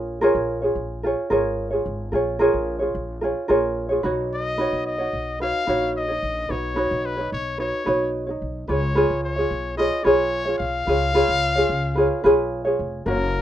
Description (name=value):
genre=acoustic pop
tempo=110 BPM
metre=4/4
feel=straight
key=unclear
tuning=A4 = 438 Hz
part: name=ukulele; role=accompaniment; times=0.0-13.4 s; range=C#4 to C#5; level=-21 LUFS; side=right 1 dB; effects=none
part: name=upright bass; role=bass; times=0.0-13.4 s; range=E#1 to C#2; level=-30 LUFS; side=equal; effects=none
part: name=bright trumpet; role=melody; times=4.3-13.4 s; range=A#4 to E#5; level=-25 LUFS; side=left 3 dB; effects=none
part: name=clear concert grand piano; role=accompaniment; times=13.1-13.4 s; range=A#3 to C#5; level=-30 LUFS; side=left 4 dB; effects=none
room=moderate studio ambience, RT60 0.5 s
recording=rough home demo mix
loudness=-20 LUFS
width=side -11 dB against mid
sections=0.0-13.1 A section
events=none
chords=0.0 A#m7; 4.0 Badd9; 8.7 C#7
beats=0.49 1.03 1.58 | 2.13 2.67 3.22 3.77 | 4.32 4.86 5.41 5.96 | 6.50 7.05 7.60 8.14 | 8.69 9.24 9.78 10.33 | 10.88 11.42 11.97 12.52 | 13.06